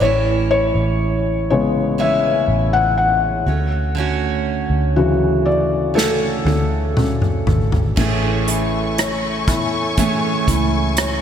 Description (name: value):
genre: pop ballad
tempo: 60 BPM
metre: 4/4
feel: straight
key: A major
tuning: A4 = 439 Hz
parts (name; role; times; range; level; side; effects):
- felt-muted upright piano; accompaniment; 0.0-11.2 s; C#3 to F#5; -19 LUFS; left 4 dB; slapback echo
- picked steel-string acoustic guitar; arpeggios; 0.0-11.2 s; A2 to G#4; -23 LUFS; right 7 dB; slapback echo
- vintage muted fingered electric bass; bass; 0.0-11.2 s; G#1 to E2; -22 LUFS; right 1 dB; none
- unplugged drum kit; drums; 6.0-11.2 s; crash cymbal, hi-hat, kick drum, rim click, snare drum, toms; -20 LUFS; equal; none
- warm studio string section; sustained chords; 8.0-11.2 s; A3 to C#6; -23 LUFS; left 1 dB; none
room: moderate lush hall reverb, RT60 2.6 s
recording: big arena sound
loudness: -15 LUFS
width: side -8 dB against mid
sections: 0.0-8.0 A section; 8.0-11.2 B section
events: felt piano solo 0.0-8.0; drum fill 6.0-8.0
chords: 0.0 Amaj7; 3.5 Dmaj7; 8.0 Amaj7